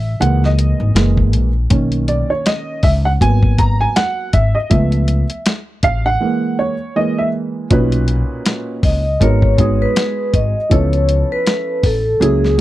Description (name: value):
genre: hip hop, jazz-hop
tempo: 80 BPM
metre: 4/4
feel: swing 58% on 16ths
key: B major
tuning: A4 = 439 Hz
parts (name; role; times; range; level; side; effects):
- dark upright piano; accompaniment; 0.0-12.6 s; A#2 to A#5; -18 LUFS; right 3 dB; none
- upright bass; bass; 0.0-12.6 s; F#1 to C#2; -16 LUFS; left 1 dB; none
- dusty soul sampler-style drum kit; drums; 0.2-12.6 s; hi-hat, kick drum, snare drum; -16 LUFS; left 1 dB; none
- vibraphone with medium mallets; melody; 8.8-12.6 s; G#4 to D#5; -18 LUFS; left 1 dB; none
room: small room ambience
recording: dry, close 1970s-style studio recording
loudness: -13 LUFS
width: side -15 dB against mid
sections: 0.0-7.7 A section; 7.7-12.6 A section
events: upright piano solo 0.0-7.7; break 6.2-7.7; vibraphone solo 7.7-12.6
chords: 0.2 F#13; 1.0 F#9; 1.7 Bmaj9; 3.2 G#m9; 4.7 C#7alt; 6.2 Emaj7#11; 7.7 Bmaj9; 9.2 G#m9; 10.7 C#7alt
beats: 0.21 0.96 | 1.71 2.46 3.21 3.96 | 4.71 5.46 6.21 6.96 | 7.71 8.46 9.21 9.96 | 10.71 11.46 12.21